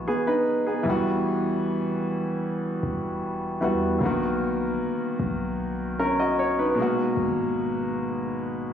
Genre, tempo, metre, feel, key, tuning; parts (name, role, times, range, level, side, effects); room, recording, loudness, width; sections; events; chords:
contemporary R&B; 76 BPM; 4/4; straight; B major; A4 = 437 Hz
warm concert grand piano; accompaniment; 0.0-8.7 s; B2 to D#5; -24 LUFS; equal
warm 808-style bass; bass; 0.0-8.7 s; E1 to E2; -35 LUFS; equal
moderate lush hall reverb, RT60 2.4 s; recorded on a phone in the room, club reverb; -23 LUFS; side -8 dB against mid
0.0-8.7 A section
0.0 F#9sus4; 0.9 Emadd9; 4.0 Bmaj7; 6.8 G#m9